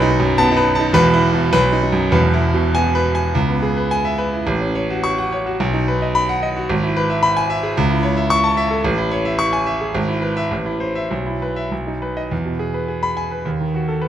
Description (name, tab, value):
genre	classical, virtuoso piano study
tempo	97-114 BPM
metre	2/4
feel	rubato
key	E major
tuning	A4 = 443 Hz
part	clear concert grand piano	solo	0.0-14.1 s	E1 to C#6	-16 LUFS	equal	none
room	moderate recital hall reverb, RT60 1.5 s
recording	none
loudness	-16 LUFS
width	side -10 dB against mid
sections	0.0-3.3 A section; 3.3-12.3 B section; 12.3-14.1 C section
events	none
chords	0.0 B7; 0.9 E5; 1.5 B; 2.1 E; 3.3 C#m7; 4.5 F#m/A; 5.6 B; 6.7 E/G#; 7.8 A/C#; 8.8 Amaj7; 9.9 E/G#; 10.5 Am; 11.1 E5/B; 11.7 B; 12.3 E; 13.5 B7/D# (rootless)